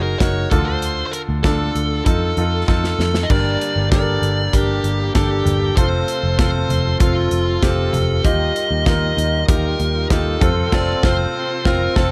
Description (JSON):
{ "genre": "piano-driven pop", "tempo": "97 BPM", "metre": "4/4", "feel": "straight", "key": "unclear", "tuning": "A4 = 440 Hz", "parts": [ { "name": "dark smooth lead guitar", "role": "melody", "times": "0.0-12.1 s", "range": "F4 to Eb5", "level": "-25 LUFS", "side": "equal", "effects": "overdrive" }, { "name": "bright upright piano", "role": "accompaniment", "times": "0.0-12.1 s", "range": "G2 to Bb4", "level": "-24 LUFS", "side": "equal", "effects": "none" }, { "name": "vintage muted picked electric bass", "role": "bass", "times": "0.0-12.1 s", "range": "F1 to F2", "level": "-23 LUFS", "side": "equal", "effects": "none" }, { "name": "modern studio drum kit", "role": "drums", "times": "0.2-12.1 s", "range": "crash cymbal, hi-hat, kick drum, snare drum, toms", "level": "-22 LUFS", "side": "equal", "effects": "none" }, { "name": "overdriven tonewheel organ", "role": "sustained chords", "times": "3.3-12.1 s", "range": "C3 to G4", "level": "-33 LUFS", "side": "equal", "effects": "none" } ], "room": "small room ambience", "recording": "none", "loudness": "-18 LUFS", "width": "mono", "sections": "0.0-3.3 A section; 3.3-12.1 B section", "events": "drum fill 2.7-3.3; band accent 10.7-12.1", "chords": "0.0 Gb6; 0.5 Dm; 2.1 F7; 3.3 Gm; 5.8 F; 8.2 Ebadd9; 10.4 F" }